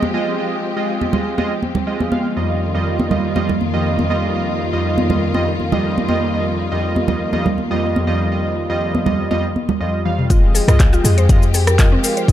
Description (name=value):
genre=afro house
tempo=121 BPM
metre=4/4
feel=swing 53% on 16ths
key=unclear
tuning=A4 = 439 Hz
part: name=warm studio string section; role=sustained chords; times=0.0-12.3 s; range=F2 to G4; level=-24 LUFS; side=left 2 dB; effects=vintage 12-bit sampler grit, sidechain pumping
part: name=warm analog keys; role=stabs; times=0.0-12.3 s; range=F2 to F5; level=-20 LUFS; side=right 1 dB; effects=chorus, vintage 12-bit sampler grit, sidechain pumping, ping-pong delay
part: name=congas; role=percussion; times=0.0-9.8 s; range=none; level=-21 LUFS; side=right 2 dB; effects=none
part: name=afro-pop drum kit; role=drums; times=10.1-12.3 s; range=cabasa, handclaps, hi-hat, rim click, toms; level=-20 LUFS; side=left 1 dB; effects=low-pass filter on toms, small room ambience, low-pass filter on hats, low-pass filter on perc, low-pass filter on snare
part: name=mallet-like synth pluck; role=arpeggios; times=10.3-12.3 s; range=C4 to F5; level=-23 LUFS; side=left 2 dB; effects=chorus, sidechain pumping, ping-pong delay
part: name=warm 808-style bass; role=bass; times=10.3-12.0 s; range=F1 to F2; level=-15 LUFS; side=left 1 dB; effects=sidechain pumping
part: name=electronic kick drum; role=drums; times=10.3-12.3 s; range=none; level=-13 LUFS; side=equal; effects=small room ambience
part: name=marimba with medium mallets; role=melody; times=11.7-12.2 s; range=Bb4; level=-22 LUFS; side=equal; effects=none
room=light reverb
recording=dark, warm production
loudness=-15 LUFS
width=side -12 dB against mid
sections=0.0-10.3 A section; 10.3-12.3 B section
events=drum fill 10.1; drop 10.3-12.3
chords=0.0 Fm7; 2.4 Ebadd9/F; 10.3 Fm7